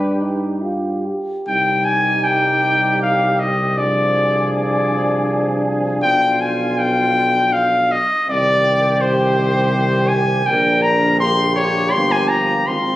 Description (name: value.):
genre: classical, hymn-like piece for brass band.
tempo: 69-85 BPM.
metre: 3/4.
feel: rubato.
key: C minor.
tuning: A4 = 440 Hz.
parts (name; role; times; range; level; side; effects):
warm cornet; melody; 0.0-13.0 s; B4 to C6; -17 LUFS; left 1 dB; none.
warm flugelhorn; second line; 0.0-13.0 s; F4 to Bb4; -26 LUFS; right 3 dB; none.
clear euphonium; accompaniment; 0.0-13.0 s; Bb3 to G4; -24 LUFS; equal; none.
warm trombone; accompaniment; 0.0-13.0 s; D3 to G3; -29 LUFS; right 2 dB; none.
mellow tuba; bass; 0.0-13.0 s; G1 to G2; -21 LUFS; equal; none.
room: moderate recital hall reverb, RT60 1.6 s.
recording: recorded on a phone in the room, club reverb.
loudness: -14 LUFS.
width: side -15 dB against mid.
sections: 0.0-1.5 A section; 1.5-13.0 B section.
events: none.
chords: 0.0 G; 1.5 Cm; 3.8 Dm7b5/C; 6.0 Bdim; 8.3 Cm; 10.5 Gm/Bb.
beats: 0.64 | 1.47 2.25 3.01 | 3.77 4.52 5.27 | 6.02 6.77 7.53 | 8.29 9.02 9.73 | 10.46 11.20 11.94 | 12.69.